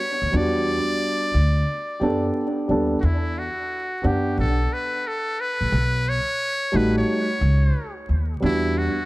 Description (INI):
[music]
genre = hip hop, jazz-hop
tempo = 89 BPM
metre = 4/4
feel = swing 65% on 16ths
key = E dorian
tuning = A4 = 440 Hz
[part]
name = trumpet with metal mute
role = melody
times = 0.0-9.1 s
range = E4 to D5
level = -26 LUFS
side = equal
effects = analog delay
[part]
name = upright bass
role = bass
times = 0.2-8.9 s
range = A1 to F#2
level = -22 LUFS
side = equal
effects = none
[part]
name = dark grand piano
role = accompaniment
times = 0.3-8.9 s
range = F#3 to F#5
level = -24 LUFS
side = right 1 dB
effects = analog delay
[sound]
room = light reverb, small room ambience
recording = echo-heavy mix, vinyl crackle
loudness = -20 LUFS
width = side -19 dB against mid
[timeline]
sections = 0.0-3.0 A section; 3.0-9.1 A section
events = none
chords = 0.0 Em9; 5.7 B7b13; 8.4 Em9